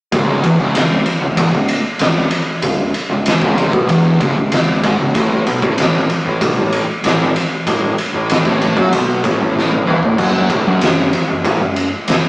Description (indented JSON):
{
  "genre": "stoner and doom metal",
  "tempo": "95 BPM",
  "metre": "4/4",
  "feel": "straight",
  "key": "C# minor",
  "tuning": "A4 = 441 Hz",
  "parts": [
    { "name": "thick fuzz guitar", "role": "riff", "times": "0.1-12.3 s", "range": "C#2 to F#3", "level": "-21 LUFS", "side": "equal", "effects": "distortion" },
    { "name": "thick fuzz guitar", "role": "riff", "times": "0.1-12.3 s", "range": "C#2 to F#3", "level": "-19 LUFS", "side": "equal", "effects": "distortion" },
    { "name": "overdriven picked electric bass", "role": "bass", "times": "0.1-12.3 s", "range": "C#1 to F#2", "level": "-21 LUFS", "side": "equal", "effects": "none" },
    { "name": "oversized low-tuned drum kit", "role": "drums", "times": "0.1-12.2 s", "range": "crash cymbal, kick drum, ride cymbal, snare drum, toms", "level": "-15 LUFS", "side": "equal", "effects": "none" }
  ],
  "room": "light reverb",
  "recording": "rough rehearsal-room recording, warm saturation, small speaker sound",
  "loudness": "-12 LUFS",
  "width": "side -24 dB against mid",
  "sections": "0.1-12.3 A section",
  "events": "drum fill 9.6-10.2",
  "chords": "0.1 C#m; 5.1 A5; 10.2 Esus4 (rootless)"
}